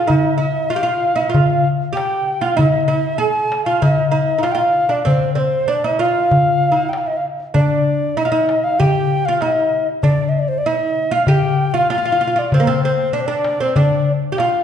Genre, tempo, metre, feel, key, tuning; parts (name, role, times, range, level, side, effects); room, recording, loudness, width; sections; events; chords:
Arabic maqam ensemble; 96 BPM; 4/4; straight; F maqam rast; A4 = 440 Hz
bright reedy alto ocarina; melody; 0.0-14.6 s; C5 to Ab5+50c; -18 LUFS; left 1 dB
oud; second line; 0.0-14.6 s; Bb3 to Ab4+50c; -21 LUFS; right 4 dB
darbuka; percussion; 0.1-14.5 s; -18 LUFS; left 2 dB
wet recital hall reverb, RT60 1.5 s; heard from further back in the room, nothing above 10.8 kHz; -14 LUFS; side -8 dB against mid
0.0-14.6 A section